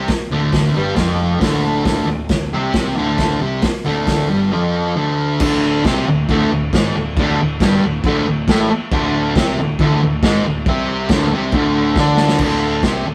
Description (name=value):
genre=garage rock duo or trio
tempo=136 BPM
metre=4/4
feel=straight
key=D minor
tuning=A4 = 440 Hz
part: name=fuzz guitar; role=riff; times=0.0-13.1 s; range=D2 to D4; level=-19 LUFS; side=equal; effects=distortion
part: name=fuzz fingered electric bass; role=bass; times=0.0-13.1 s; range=D1 to D2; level=-27 LUFS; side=equal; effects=overdrive
part: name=vintage drum kit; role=drums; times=0.1-12.9 s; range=crash cymbal, hi-hat, kick drum, snare drum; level=-22 LUFS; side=equal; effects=none
room=moderate stone room reverb, RT60 1.1 s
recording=rough rehearsal-room recording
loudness=-17 LUFS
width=mono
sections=0.0-5.4 A section; 5.4-12.4 B section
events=drum fill 12.0-12.4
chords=0.0 Dm; 5.4 D5